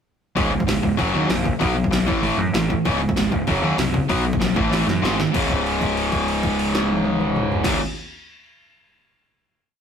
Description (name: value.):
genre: punk rock.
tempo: 193 BPM.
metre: 4/4.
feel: straight.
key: unclear.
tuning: A4 = 440 Hz.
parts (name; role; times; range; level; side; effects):
cranked stack guitar; riff; 0.4-7.8 s; Db2 to Cb4; -22 LUFS; left 5 dB; overdrive.
distorted electric guitar; riff; 0.4-7.8 s; Db2 to Cb4; -25 LUFS; right 8 dB; distortion.
fuzz picked electric bass; bass; 0.4-7.8 s; Db1 to Gb2; -25 LUFS; right 1 dB; overdrive.
punchy analog drum machine; drums; 0.4-7.7 s; crash cymbal, hi-hat, kick drum, snare drum, toms; -24 LUFS; equal; overdrive.
room: light reverb.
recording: rough rehearsal-room recording, tube saturation.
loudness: -18 LUFS.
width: side -7 dB against mid.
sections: 0.4-5.3 verse; 5.3-7.8 final chord.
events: drum fill 4.7-5.3; held note 5.3-7.6.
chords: 0.4 Db5; 1.0 Gb; 1.6 Cb5; 2.1 A5; 2.9 Db5; 3.5 Gb5; 4.1 Cb5; 4.6 A5; 5.0 Ab5; 5.3 Db5.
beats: | 0.36 0.67 0.99 1.30 | 1.61 1.92 2.23 2.54 | 2.85 3.16 3.47 3.78 | 4.09 4.40 4.71 5.03 | 5.34 5.65 5.96 6.27 | 6.58 6.89 7.20 7.52.